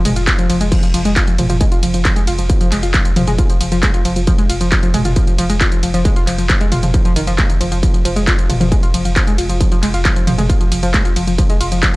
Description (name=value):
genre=driving peak-time techno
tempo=135 BPM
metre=4/4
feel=straight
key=F minor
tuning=A4 = 444 Hz
part: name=warbly dusty pluck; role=riff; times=0.1-11.9 s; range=Eb3 to F4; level=-19 LUFS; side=equal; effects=chorus, tube saturation, sidechain pumping, tape echo
part: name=warm sub bass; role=bass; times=0.1-11.8 s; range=F1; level=-20 LUFS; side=equal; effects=overdrive, sidechain pumping, low-pass filter
part: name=techno drum kit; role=drums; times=0.1-11.9 s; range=crash cymbal, handclaps, hi-hat, ride cymbal, toms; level=-20 LUFS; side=equal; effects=sidechain pumping on hats, sidechain pumping on toms, sidechain pumping on cymbals
part: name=electronic kick drum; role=drums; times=0.3-11.9 s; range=none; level=-15 LUFS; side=equal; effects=distortion
room=little or no reverb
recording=dry, gritty hardware recording, cassette tape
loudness=-12 LUFS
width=side -21 dB against mid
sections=0.0-12.0 A section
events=none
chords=none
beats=0.27 | 0.72 1.16 1.61 2.05 | 2.50 2.94 3.38 3.83 | 4.27 4.72 5.16 5.61 | 6.05 6.50 6.94 7.38 | 7.83 8.27 8.72 9.16 | 9.61 10.05 10.50 10.94 | 11.38 11.83